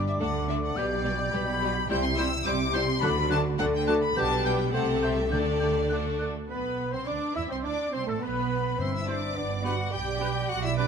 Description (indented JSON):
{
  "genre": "quick classical-period movement for symphony orchestra",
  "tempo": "105 BPM",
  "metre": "2/4",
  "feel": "straight",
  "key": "G major",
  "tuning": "A4 = 442 Hz",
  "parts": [
    { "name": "bright silver concert flute", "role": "second line", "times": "0.0-10.9 s", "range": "A4 to G6", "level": "-36 LUFS", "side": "left 2 dB", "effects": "none" },
    { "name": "warm oboe", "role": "second line", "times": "0.0-10.9 s", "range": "A4 to E5", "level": "-38 LUFS", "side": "right 2 dB", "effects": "none" },
    { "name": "mellow bassoon", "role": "accompaniment", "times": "0.0-10.9 s", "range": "G3 to E4", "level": "-36 LUFS", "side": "right 2 dB", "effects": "none" },
    { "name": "warm French horn section", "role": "sustained chords", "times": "0.0-10.9 s", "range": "G3 to A4", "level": "-32 LUFS", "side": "left 5 dB", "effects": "none" },
    { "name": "warm studio cello section", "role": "bass", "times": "0.0-10.8 s", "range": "G2 to G4", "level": "-33 LUFS", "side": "right 4 dB", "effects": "none" },
    { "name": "warm studio double bass section", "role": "bass", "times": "0.0-10.9 s", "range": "G1 to E2", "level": "-33 LUFS", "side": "right 4 dB", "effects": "none" },
    { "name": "timpani", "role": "percussion", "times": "0.0-0.2, 3.0-5.9, 8.8-9.3 s", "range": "G2 to D3", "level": "-37 LUFS", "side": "left 2 dB", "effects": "none" },
    { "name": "rich studio violin section", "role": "melody", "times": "0.1-10.9 s", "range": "D5 to G6", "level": "-33 LUFS", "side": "left 4 dB", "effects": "none" },
    { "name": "rich studio violin section", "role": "second line", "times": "0.2-10.9 s", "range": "D4 to G5", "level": "-38 LUFS", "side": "left 2 dB", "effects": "none" },
    { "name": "rich studio viola section", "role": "accompaniment", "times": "0.2-10.9 s", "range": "F#3 to G4", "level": "-35 LUFS", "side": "right 2 dB", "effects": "none" },
    { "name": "clear trumpet section", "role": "stabs", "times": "6.5-10.9 s", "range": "A4 to E5", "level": "-36 LUFS", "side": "right 2 dB", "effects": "none" }
  ],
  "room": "moderate concert hall reverb, RT60 2.2 s",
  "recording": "close, detailed microphones",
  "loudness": "-25 LUFS",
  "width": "side -6 dB against mid",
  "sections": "0.0-6.5 A section; 6.5-10.9 B section",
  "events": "none",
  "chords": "0.2 D; 0.8 G/B; 1.9 C; 3.0 D; 4.2 G/B; 4.7 Am7/C; 5.3 Dsus4; 6.5 Cmaj9/B; 7.6 Amadd11; 8.2 N.C.; 8.8 C/G; 9.4 G; 9.9 G/B",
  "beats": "0.20 | 0.77 1.33 | 1.90 2.46 | 3.02 3.59 | 4.17 4.74 | 5.32 5.91 | 6.50 7.07 | 7.65 8.22 | 8.80 9.37 | 9.93 10.50"
}